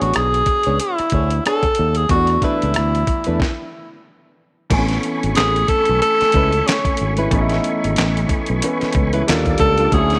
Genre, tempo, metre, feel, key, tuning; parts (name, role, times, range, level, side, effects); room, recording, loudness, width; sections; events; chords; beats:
R&B, neo-soul; 92 BPM; 4/4; swing 56% on 16ths; A4 = 441 Hz
warm tenor saxophone; melody; 0.0-10.2 s; C#4 to A4; -20 LUFS; equal; slapback echo
flamenco guitar; second line; 0.0-9.9 s; G3 to C#5; -28 LUFS; equal; slapback echo
clear baby grand piano; accompaniment; 0.0-10.2 s; D3 to G#5; -26 LUFS; equal
fingered electric bass; bass; 0.0-10.2 s; G#1 to E2; -22 LUFS; equal
dusty soul sampler-style drum kit; drums; 0.0-10.2 s; crash cymbal, handclaps, hi-hat, kick drum, rim click, snare drum; -23 LUFS; equal
tonewheel organ; sustained chords; 4.7-10.2 s; A3 to D6; -29 LUFS; equal; slow rotary speaker, chorus vibrato
light reverb, small room ambience; -17 LUFS; mono
0.0-4.7 A section; 4.7-10.2 B section
stop 3.4-4.7
0.0 Bm69; 2.1 E7sus4; 4.1 N.C.; 4.7 Amaj9; 9.3 D#maj9#11
0.14 0.79 1.44 | 2.10 2.75 3.40 4.05 | 4.71 5.36 6.01 6.66 | 7.31 7.97 8.62 9.27 | 9.92